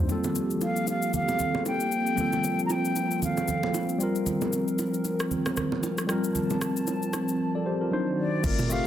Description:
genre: amapiano.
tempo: 115 BPM.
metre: 4/4.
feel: swing 58% on 16ths.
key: G minor.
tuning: A4 = 440 Hz.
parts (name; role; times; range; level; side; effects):
tine electric piano; accompaniment; 0.0-8.9 s; F#3 to D5; -30 LUFS; left 2 dB; medium stereo tremolo.
hollow soft pad; sustained chords; 0.0-8.9 s; Bb2 to A5; -30 LUFS; right 2 dB; chorus, sidechain pumping.
hollow log drum bass; bass; 0.0-0.1, 8.4-8.8 s; G1; -29 LUFS; equal; none.
afro-pop drum kit; drums; 0.1-8.8 s; crash cymbal, kick drum, rim click, shaker, toms; -33 LUFS; equal; none.
congas and bongos; percussion; 0.1-8.7 s; none; -34 LUFS; right 5 dB; none.
mellow concert flute; melody; 0.6-4.0, 8.2-8.9 s; D5 to Bb5; -30 LUFS; left 1 dB; tape echo.
room: light reverb.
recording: dense, heavily limited modern master.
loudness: -25 LUFS.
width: side -11 dB against mid.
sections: 0.1-8.4 A section.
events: none.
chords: 0.1 Gm11; 7.9 D7b9.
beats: | 0.09 0.61 1.14 1.66 | 2.18 2.70 3.22 3.74 | 4.26 4.79 5.31 5.83 | 6.35 6.87 7.40 7.92 | 8.44.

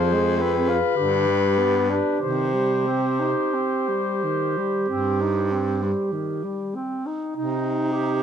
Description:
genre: classical, lyrical piece for single-reed quartet.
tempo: 44-56 BPM.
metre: 4/4.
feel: rubato.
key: C minor.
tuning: A4 = 440 Hz.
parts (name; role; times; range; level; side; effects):
mellow soprano saxophone; melody; 0.0-6.1 s; B4 to C5; -25 LUFS; left 9 dB; none.
mellow clarinet; second line; 0.0-8.2 s; Eb4 to Ab4; -26 LUFS; right 8 dB; none.
warm tenor saxophone; accompaniment; 0.0-8.2 s; D3 to F4; -26 LUFS; left 1 dB; none.
bright baritone saxophone; bass; 0.0-8.2 s; F2 to C3; -25 LUFS; right 2 dB; none.
room: moderate recital hall reverb, RT60 1.6 s.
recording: close, detailed microphones.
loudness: -20 LUFS.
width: side -8 dB against mid.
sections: 0.0-7.4 A section.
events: none.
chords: 0.0 Fm; 1.0 G; 2.2 Cm.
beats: 0.98 | 2.20 3.54 4.88 6.13 | 7.37.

